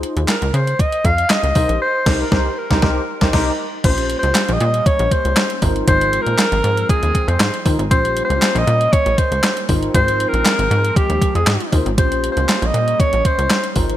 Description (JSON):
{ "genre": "early-eighties boogie funk", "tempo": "118 BPM", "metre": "4/4", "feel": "straight", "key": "Bb dorian", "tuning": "A4 = 440 Hz", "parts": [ { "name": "tine electric piano", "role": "accompaniment", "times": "0.0-14.0 s", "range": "Db4 to C5", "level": "-23 LUFS", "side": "left 2 dB", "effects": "overdrive, analog chorus" }, { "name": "plucky analog bass", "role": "bass", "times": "0.0-14.0 s", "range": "Ab1 to Db3", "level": "-19 LUFS", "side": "equal", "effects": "none" }, { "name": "crisp 8-bit digital drum machine", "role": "drums", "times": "0.0-14.0 s", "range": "crash cymbal, handclaps, hi-hat, kick drum, snare drum", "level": "-18 LUFS", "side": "equal", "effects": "overdrive" }, { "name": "breathy alto saxophone", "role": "melody", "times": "0.3-13.8 s", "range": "G4 to F5", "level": "-19 LUFS", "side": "equal", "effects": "ping-pong delay" }, { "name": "chorused pulse-width pad", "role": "sustained chords", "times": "3.8-14.0 s", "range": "F3 to Db4", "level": "-28 LUFS", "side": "right 1 dB", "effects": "none" } ], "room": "moderate lush hall reverb, RT60 1.7 s", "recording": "bright 1980s-style digital production", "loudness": "-14 LUFS", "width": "side -12 dB against mid", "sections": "0.0-3.8 A section; 3.8-14.0 B section", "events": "band accent 1.8-3.8", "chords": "0.0 Dbmaj7; 1.6 Cm7; 3.8 Bbm69; 5.6 Ab69; 7.9 Bbm69; 9.7 Ab69; 12.0 Bbm69", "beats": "0.28 0.79 1.30 | 1.81 2.32 2.83 3.33 | 3.84 4.35 4.86 5.37 | 5.88 6.39 6.89 7.40 | 7.91 8.42 8.93 9.44 | 9.95 10.45 10.96 11.47 | 11.98 12.49 13.00 13.50" }